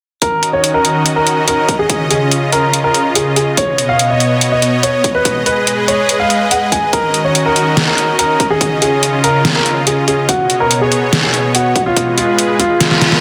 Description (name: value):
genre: heavy wobble dubstep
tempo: 143 BPM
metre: 4/4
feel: half-time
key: Eb minor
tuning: A4 = 440 Hz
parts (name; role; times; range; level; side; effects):
- warm grand piano; melody; 0.2-13.2 s; F4 to Ab5; -17 LUFS; equal; none
- supersaw pad; sustained chords; 0.2-13.2 s; B2 to F5; -18 LUFS; equal; sidechain pumping
- dubstep drum kit; drums; 0.2-13.2 s; hi-hat, snare drum; -17 LUFS; equal; none
- electronic kick drum; drums; 0.2-12.7 s; none; -23 LUFS; equal; high-pass filter on kick, high-pass filter on room
- reverse cymbal; sound effects; 13.0-13.2 s; none; -20 LUFS; equal; none
room: moderate lush hall reverb, RT60 1.9 s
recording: dense, heavily limited modern master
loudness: -13 LUFS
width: mono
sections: 0.2-13.2 A section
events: drum fill 12.8-13.2; reverse cymbal 13.0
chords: 0.2 Ebm7; 1.9 Dbadd9; 3.6 Badd9; 5.3 Abm; 6.9 Ebm7; 8.6 Dbadd9; 10.3 Badd9; 12.0 Abm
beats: | 0.22 0.64 1.06 1.48 | 1.90 2.31 2.73 3.15 | 3.57 3.99 4.41 4.83 | 5.25 5.67 6.09 6.51 | 6.93 7.35 7.77 8.19 | 8.61 9.03 9.45 9.87 | 10.29 10.71 11.13 11.55 | 11.96 12.38 12.80